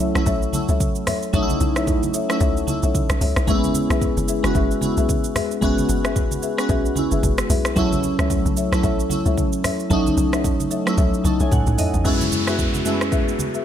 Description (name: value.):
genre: amapiano.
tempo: 112 BPM.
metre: 4/4.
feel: swing 58% on 16ths.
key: F# minor.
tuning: A4 = 440 Hz.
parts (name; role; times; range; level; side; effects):
glassy digital keys; accompaniment; 0.0-13.6 s; F#2 to A5; -22 LUFS; right 1 dB; chorus.
marimba with medium mallets; stabs; 0.0-13.6 s; F#4 to E5; -27 LUFS; left 8 dB; ping-pong delay.
tight log drum bass; bass; 0.0-12.0 s; F#1 to C#2; -23 LUFS; equal; none.
afro-pop drum kit; drums; 0.0-13.6 s; hi-hat, kick drum, rim click, shaker, toms; -23 LUFS; equal; none.
congas; percussion; 0.5-13.5 s; none; -30 LUFS; right 2 dB; none.
downlifter; sound effects; 12.1-13.6 s; none; -27 LUFS; equal; none.
room: digital ambience.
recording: none.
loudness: -18 LUFS.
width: side -10 dB against mid.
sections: 0.0-12.1 A section; 12.1-13.6 B section.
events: drop 0.0-12.1; drum fill 11.0-12.1; synth keys fill 11.0-12.1.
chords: 0.0 B9sus4; 3.5 F#9sus4; 7.8 B9sus4; 12.1 F#9sus4.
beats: 0.27 0.80 | 1.34 1.87 2.41 2.94 | 3.48 4.02 4.55 5.09 | 5.62 6.16 6.69 7.23 | 7.77 8.30 8.84 9.37 | 9.91 10.44 10.98 11.52 | 12.05 12.59 13.12.